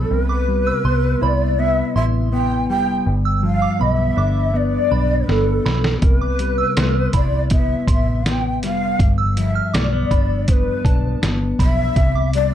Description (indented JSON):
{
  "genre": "indie pop, bedroom pop",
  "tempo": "81 BPM",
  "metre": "4/4",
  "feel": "straight",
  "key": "C major",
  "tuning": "A4 = 440 Hz",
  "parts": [
    { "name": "breathy long shakuhachi", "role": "melody", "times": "0.0-12.5 s", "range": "A4 to G5", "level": "-22 LUFS", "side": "equal", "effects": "ensemble chorus" },
    { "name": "mellow electric guitar", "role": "accompaniment", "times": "0.0-12.5 s", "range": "G2 to E4", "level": "-22 LUFS", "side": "left 2 dB", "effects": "wide subtle chorus, warbly pitch drift" },
    { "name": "vintage muted picked electric bass", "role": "bass", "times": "0.0-12.5 s", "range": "F1 to C2", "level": "-20 LUFS", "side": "equal", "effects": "none" },
    { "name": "soft synth bell", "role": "second line", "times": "0.3-12.3 s", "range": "A5 to F6", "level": "-28 LUFS", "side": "right 7 dB", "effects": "lush chorus, tape echo" },
    { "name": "trip hop sampler-style drum kit", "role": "drums", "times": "5.3-12.5 s", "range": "hi-hat, kick drum, snare drum", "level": "-18 LUFS", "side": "equal", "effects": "none" }
  ],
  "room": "light reverb",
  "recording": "dark, warm production",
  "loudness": "-16 LUFS",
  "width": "side -10 dB against mid",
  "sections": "0.0-12.5 A section",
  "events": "drum fill 5.3-6.0",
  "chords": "0.1 Cmaj7; 3.1 G7; 6.0 Cmaj7; 9.0 G7; 12.0 Cmaj7",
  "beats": "| 0.10 0.84 1.58 2.32 | 3.06 3.80 4.54 5.28 | 6.03 6.77 7.51 8.25 | 8.99 9.73 10.48 11.22 | 11.96"
}